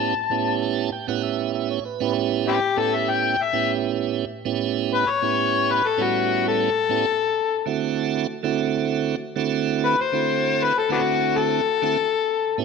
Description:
blues; 98 BPM; 4/4; straight; A mixolydian; A4 = 441 Hz
overdriven harmonica; melody; 0.0-12.6 s; B3 to A5; -21 LUFS; left 7 dB; slapback echo
tonewheel organ; accompaniment; 0.0-12.6 s; A2 to A5; -24 LUFS; right 10 dB; overdrive, slow rotary speaker
wet echo chamber reverb, RT60 2.2 s; 1960s-style stereo with parts hard left and right; -20 LUFS; side -5 dB against mid
0.0-12.6 A section
harmonica solo 0.0-12.6; tonewheel organ fill 0.3-2.2
0.0 A9; 7.1 D9; 12.0 A9
0.31 0.92 1.54 | 2.15 2.77 3.38 4.00 | 4.61 5.22 5.84 6.45 | 7.07 7.68 8.29 8.91 | 9.52 10.13 10.74 11.36 | 11.97 12.58

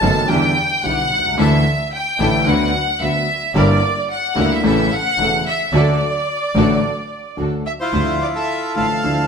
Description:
tango; 110 BPM; 4/4; rubato; D major; A4 = 440 Hz
clear chamber violin section; second line; 0.0-9.3 s; C5 to A5; -19 LUFS; equal
warm grand piano; accompaniment; 0.0-9.3 s; E1 to F#4; -19 LUFS; left 1 dB
warm symphonic string section; stabs; 0.0-7.6 s; B3 to B4; -24 LUFS; right 1 dB
rich double bass; bass; 0.0-9.3 s; E1 to E2; -22 LUFS; right 2 dB
bandoneon; melody; 7.7-9.3 s; E4 to F5; -20 LUFS; right 1 dB
wet stone room reverb, RT60 1.1 s; band playing live in one room; -15 LUFS; side -6 dB against mid
0.0-7.9 A section; 7.9-9.3 B section
violin section solo 0.0-7.9
0.3 Em7; 1.4 Dsus2; 2.5 Bm/D; 3.6 Gm6; 4.6 A; 5.7 D; 7.9 Dmadd9
0.30 0.84 | 1.39 1.93 2.47 3.02 | 3.56 4.10 4.64 5.19 | 5.74 6.28 6.83 7.38 | 7.94 8.49 9.04

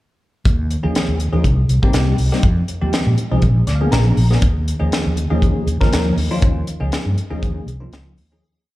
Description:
electric jazz fusion; 120 BPM; 4/4; swing 56% on 16ths; Eb mixolydian; A4 = 436 Hz
mellow fretless electric bass; bass; 0.5-8.4 s; Bb1 to Bb2; -17 LUFS; equal
tight funk drum kit; drums; 0.5-8.3 s; hi-hat, kick drum, snare drum; -19 LUFS; equal
bell-like tine electric piano; accompaniment; 0.8-8.4 s; F3 to Bb5; -22 LUFS; left 1 dB; phaser, slapback echo
light reverb, small room ambience; live gig heard through the venue's PA, club ambience; -15 LUFS; side -17 dB against mid
0.4-8.4 A section
tine electric piano fill 3.4-4.4; fade-out 6.4-8.4
0.4 Eb9sus4; 1.4 Cm7; 2.4 Fm7; 3.4 Bb7b9; 4.4 Eb9sus4
| 0.44 0.94 1.44 1.93 | 2.43 2.92 3.42 3.92 | 4.42 4.92 5.42 5.92 | 6.42 6.92 7.42 7.92

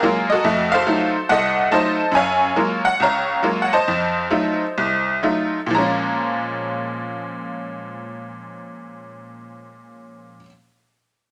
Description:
solo jazz; 121-142 BPM; 4/4; swing 65% on 8ths; Bb minor; A4 = 440 Hz
tack piano; solo; 0.0-10.5 s; C2 to Bb5; -20 LUFS; equal
wet studio reverb, RT60 0.7 s; -20 LUFS; mono
0.0-5.7 A section; 5.7-9.7 B section
slowing down 2.1-5.7
0.5 F7b9; 2.1 Gbmaj9; 3.9 F7b9; 5.7 Bbm7
0.03 | 0.45 0.87 1.29 1.72 | 2.14 2.56 2.99 3.42 | 3.86 4.30 4.76 5.24 | 5.73 6.22 6.72 7.21 | 7.71 8.21 8.71 9.20

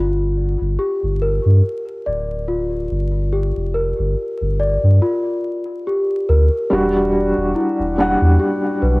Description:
trip hop; 71 BPM; 4/4; swing 55% on 16ths; A4 = 440 Hz
celesta; arpeggios; 0.0-9.0 s; E4 to D5; -21 LUFS; left 1 dB; cassette tape, tape echo
warm sub bass; bass; 0.0-9.0 s; D1 to G2; -17 LUFS; equal
felt-muted upright piano; accompaniment; 6.7-9.0 s; G3 to F#5; -16 LUFS; equal; tremolo, vintage 12-bit sampler grit, cassette tape, tape echo
light reverb, small room ambience; home recording on cassette, vinyl crackle; -16 LUFS; side -24 dB against mid
0.0-9.0 A section
0.0 Gm7; 6.7 Em7
0.79 1.64 2.48 | 3.33 4.17 5.02 5.86 | 6.71 7.55 8.40

